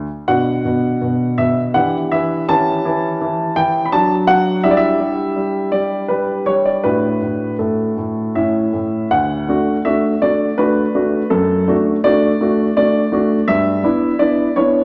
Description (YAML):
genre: classical-period piano sonatina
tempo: 82 BPM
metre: 3/4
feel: straight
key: D major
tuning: A4 = 441 Hz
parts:
  - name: warm baby grand piano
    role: solo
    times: 0.0-14.8 s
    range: D2 to B5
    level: -17 LUFS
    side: equal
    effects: none
room: wet recital hall reverb, RT60 1.8 s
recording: none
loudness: -17 LUFS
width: mono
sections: 0.0-9.1 A section; 9.1-14.8 B section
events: none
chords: 0.3 Bm; 1.7 Em7; 2.5 A7/E; 3.9 D/F#; 4.6 Em7/G; 6.8 D/A; 8.4 A; 9.1 D; 11.3 D/F#; 13.5 Em7/G